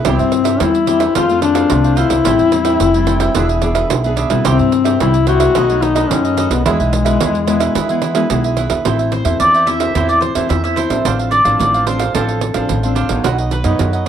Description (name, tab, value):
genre	samba and choro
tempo	109 BPM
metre	4/4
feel	straight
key	A minor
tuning	A4 = 440 Hz
part	cavaquinho	accompaniment	0.0-14.1 s	D4 to G5	-21 LUFS	right 6 dB	none
part	nylon-string guitar	accompaniment	0.0-14.1 s	F#2 to G#4	-21 LUFS	left 3 dB	none
part	upright bass	bass	0.0-14.1 s	E1 to E3	-19 LUFS	right 1 dB	none
part	pandeiro	percussion	0.0-14.1 s	none	-20 LUFS	right 10 dB	none
part	warm duduk	second line	0.1-8.3 s	G#3 to F#4	-15 LUFS	left 7 dB	none
part	mandolin	melody	9.1-14.1 s	A4 to E5	-16 LUFS	equal	none
room	light reverb, studio ambience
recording	dry, close 1970s-style studio recording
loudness	-12 LUFS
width	side -9 dB against mid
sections	0.0-8.8 A section; 8.8-14.1 B section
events	duduk solo 0.0-8.8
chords	0.1 C; 1.2 F; 2.3 Am7; 3.4 E7; 4.5 C; 5.6 B7; 6.7 E; 8.8 Am; 11.0 Dm7/A; 13.2 B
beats	| 0.05 0.60 1.15 1.70 | 2.25 2.80 3.35 3.90 | 4.45 5.00 5.55 6.10 | 6.65 7.20 7.75 8.30 | 8.85 9.40 9.95 10.50 | 11.05 11.60 12.15 12.70 | 13.25 13.80